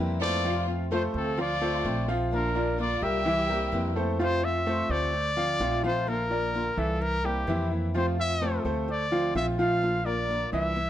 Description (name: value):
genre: latin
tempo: 128 BPM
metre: 4/4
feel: straight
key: F major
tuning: A4 = 440 Hz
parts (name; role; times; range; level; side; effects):
- fingerpicked swing-style acoustic guitar; accompaniment; 0.0-10.8 s; C3 to F4; -33 LUFS; left 4 dB; none
- bright baby grand piano; arpeggios; 0.0-10.9 s; E3 to F5; -30 LUFS; right 1 dB; none
- upright bass; bass; 0.0-10.9 s; Bb1 to F2; -31 LUFS; right 1 dB; none
- breathy trumpet; melody; 0.2-10.9 s; G4 to F5; -29 LUFS; left 1 dB; none
- warm studio violin section; second line; 0.2-4.0 s; C4 to G4; -35 LUFS; equal; none
room: light reverb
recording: close, detailed microphones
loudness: -25 LUFS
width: side -11 dB against mid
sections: 0.0-4.2 A section; 4.2-10.9 B section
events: none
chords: 0.4 F; 1.4 Dm7; 2.3 Bb; 3.3 C7; 4.2 F; 5.1 Dm7; 6.1 Bb; 7.0 C7; 7.9 F; 8.9 Dm7; 9.8 Bb